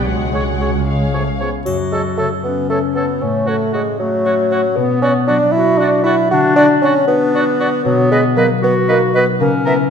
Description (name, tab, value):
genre	cinematic, playful, whimsical film cue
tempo	78 BPM (dotted quarters)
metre	6/8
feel	straight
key	F# minor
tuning	A4 = 442 Hz
part	muted studio violin section	melody	0.0-1.5 s	E#5 to F#5	-29 LUFS	left 3 dB	none
part	muted studio violin section	second line	0.0-1.5 s	G#4 to C#5	-27 LUFS	equal	none
part	muted studio viola section	accompaniment	0.0-0.9 s	G#3	-29 LUFS	equal	none
part	warm French horn section	sustained chords	0.0-1.5 s	G#3 to F#4	-28 LUFS	left 4 dB	none
part	concert harp	arpeggios	0.0-9.9 s	F#2 to C#5	-21 LUFS	left 8 dB	none
part	muted studio cello section	bass	0.0-0.9 s	G#3	-30 LUFS	equal	none
part	muted studio double bass section	bass	0.0-1.5 s	C#2	-20 LUFS	right 4 dB	none
part	clear clarinet	second line	0.3-9.9 s	A3 to G#4	-19 LUFS	left 1 dB	none
part	warm oboe	second line	0.3-9.7 s	F#4 to C#5	-24 LUFS	right 2 dB	none
part	mellow bassoon	accompaniment	0.3-9.8 s	E#3 to F#4	-16 LUFS	right 1 dB	none
part	triangle	percussion	1.7-2.7 s	none	-40 LUFS	left 6 dB	none
part	bright silver concert flute	second line	1.9-9.7 s	C#5 to E5	-26 LUFS	left 2 dB	none
room	wet scoring stage reverb, RT60 1.5 s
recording	none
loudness	-13 LUFS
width	side -7 dB against mid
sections	0.0-1.7 A section; 1.7-9.9 B section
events	none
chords	0.1 C#sus4; 0.9 C#; 1.7 F#m; 3.2 F#m/A; 4.8 Bm; 6.3 Bm/D; 7.9 B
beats	| 0.07 0.87 | 1.67 2.45 | 3.23 4.00 | 4.77 5.55 | 6.32 7.09 | 7.86 8.63 | 9.40